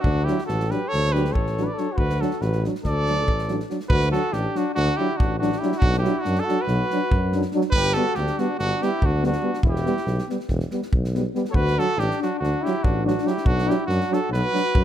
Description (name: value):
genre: balkan folk, Balkan brass band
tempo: 283 BPM (eighths)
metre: 9/8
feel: straight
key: D major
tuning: A4 = 439 Hz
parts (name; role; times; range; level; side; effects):
- warm trumpet; melody; 0.0-14.8 s; F#4 to D5; -26 LUFS; right 3 dB; none
- mellow flugelhorn; second line; 0.0-14.8 s; D4 to B4; -29 LUFS; left 6 dB; none
- natural country drum kit; percussion; 0.0-14.8 s; kick drum, snare drum; -25 LUFS; equal; none
- mellow tuba; bass; 0.1-14.8 s; E1 to F#2; -25 LUFS; equal; none
- clear euphonium; accompaniment; 0.3-14.6 s; F#3 to G3; -30 LUFS; right 9 dB; none
- warm euphonium; accompaniment; 0.3-14.6 s; B3 to D4; -29 LUFS; left 6 dB; none
room: light reverb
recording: close, detailed microphones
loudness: -20 LUFS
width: side -10 dB against mid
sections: 0.0-3.9 A section; 3.9-14.8 B section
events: none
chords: 0.0 D; 5.8 Bm; 7.7 G; 9.6 Em; 11.5 D; 13.4 Bm